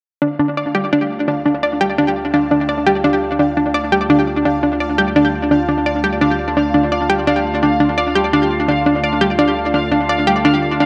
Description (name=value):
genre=ambient, sequencer-driven space music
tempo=85 BPM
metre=4/4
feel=straight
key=D minor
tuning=A4 = 442 Hz
part: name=sweeping resonant pad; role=sustained chords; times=0.2-10.9 s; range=D3 to A5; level=-25 LUFS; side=equal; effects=chorus
part: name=analog pluck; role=riff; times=0.2-10.9 s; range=D4 to D5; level=-17 LUFS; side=equal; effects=chorus, tape echo
part: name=warm sub bass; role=bass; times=0.2-10.9 s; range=D2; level=-34 LUFS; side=equal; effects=none
part: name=pulsing gated texture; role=texture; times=0.3-10.9 s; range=F5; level=-27 LUFS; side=equal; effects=chorus, built-in reverb
room=wet spring reverb, RT60 2.4 s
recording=echo-heavy mix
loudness=-16 LUFS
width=mono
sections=0.2-10.9 A section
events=fade-in on sub bass 0.2-10.9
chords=0.2 Dm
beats=| 0.22 0.92 1.63 2.33 | 3.04 3.75 4.45 5.16 | 5.86 6.57 7.28 7.98 | 8.69 9.39 10.10 10.81